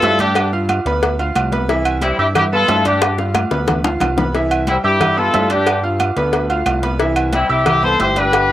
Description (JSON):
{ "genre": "latin, salsa", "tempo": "181 BPM", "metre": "4/4", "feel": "straight", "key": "C major", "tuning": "A4 = 436 Hz", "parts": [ { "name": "bright horn section", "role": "melody", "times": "0.0-8.5 s", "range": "C4 to C5", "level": "-16 LUFS", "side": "left 2 dB", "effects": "cassette tape, plate reverb" }, { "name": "bright grand piano", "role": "accompaniment", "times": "0.0-8.5 s", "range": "E3 to F6", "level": "-20 LUFS", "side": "right 2 dB", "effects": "cassette tape, plate reverb" }, { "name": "fat analog bass", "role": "bass", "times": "0.0-8.5 s", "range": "G1 to G2", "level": "-21 LUFS", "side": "equal", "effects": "none" }, { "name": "congas", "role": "percussion", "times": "0.0-8.5 s", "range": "none", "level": "-26 LUFS", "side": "left 1 dB", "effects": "none" }, { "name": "cowbell and bongos", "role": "percussion", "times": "0.0-8.5 s", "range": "none", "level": "-22 LUFS", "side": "left 5 dB", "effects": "none" }, { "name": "timbales and agogo bells", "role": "percussion", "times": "0.0-8.5 s", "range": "none", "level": "-22 LUFS", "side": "right 4 dB", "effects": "none" }, { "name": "claves", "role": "percussion", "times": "0.4-8.5 s", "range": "none", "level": "-29 LUFS", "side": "right 4 dB", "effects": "none" } ], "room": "moderate booth ambience, RT60 0.2 s", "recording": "home recording on cassette", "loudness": "-14 LUFS", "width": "side -13 dB against mid", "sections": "0.0-8.5 A section", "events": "drum fill 3.0-4.3", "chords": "0.4 G7; 1.7 Cmaj7; 3.0 G7; 4.3 Cmaj7; 5.7 G7; 7.0 Cmaj7" }